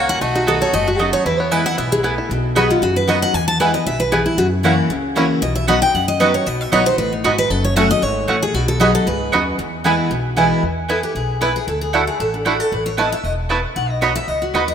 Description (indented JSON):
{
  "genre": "bluegrass",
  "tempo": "230 BPM",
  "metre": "4/4",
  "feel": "swing 53% on 8ths",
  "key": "E major",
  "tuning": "A4 = 440 Hz",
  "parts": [
    { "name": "picked steel-string acoustic guitar", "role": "melody", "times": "0.0-9.6 s", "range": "D#4 to A5", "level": "-19 LUFS", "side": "equal", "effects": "none" },
    { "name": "clear fiddle", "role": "second line", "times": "0.0-2.2 s", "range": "E4 to F#4", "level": "-25 LUFS", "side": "left 3 dB", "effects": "none" },
    { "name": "picked steel-string acoustic guitar", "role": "accompaniment", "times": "0.0-14.7 s", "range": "E2 to F#5", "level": "-21 LUFS", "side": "left 2 dB", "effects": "none" },
    { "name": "bluegrass banjo", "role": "arpeggios", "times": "0.0-14.6 s", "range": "A3 to A4", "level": "-26 LUFS", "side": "right 2 dB", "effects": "tape echo" },
    { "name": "mandolin", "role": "stabs", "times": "0.0-14.6 s", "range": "A3 to B5", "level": "-21 LUFS", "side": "right 4 dB", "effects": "none" },
    { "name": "upright bass", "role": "bass", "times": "0.0-14.7 s", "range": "E1 to F#2", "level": "-24 LUFS", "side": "equal", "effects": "none" }
  ],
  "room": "moderate lush hall reverb, RT60 3.1 s",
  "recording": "rough home demo mix",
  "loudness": "-15 LUFS",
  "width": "side -8 dB against mid",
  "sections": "0.0-2.3 A section; 2.3-10.6 B section; 10.6-14.7 C section",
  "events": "steel-string acoustic guitar solo 10.6-14.7",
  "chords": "0.2 B7; 1.3 E; 2.3 B; 3.3 E; 4.4 F#7; 5.4 B; 7.5 F#m; 8.5 B; 9.6 E; 11.7 Dadd9; 12.7 Asus2; 13.8 B",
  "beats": "| 0.21 0.47 0.74 1.00 | 1.26 1.52 1.78 2.04 | 2.30 2.56 2.82 3.08 | 3.34 3.60 3.86 4.12 | 4.38 4.64 4.90 5.16 | 5.42 5.68 5.94 6.20 | 6.46 6.72 6.98 7.24 | 7.50 7.76 8.03 8.29 | 8.55 8.81 9.07 9.33 | 9.59 9.85 10.11 10.37 | 10.63 10.89 11.15 11.41 | 11.68 11.94 12.20 12.46 | 12.72 12.98 13.24 13.50 | 13.76 14.02 14.28 14.54"
}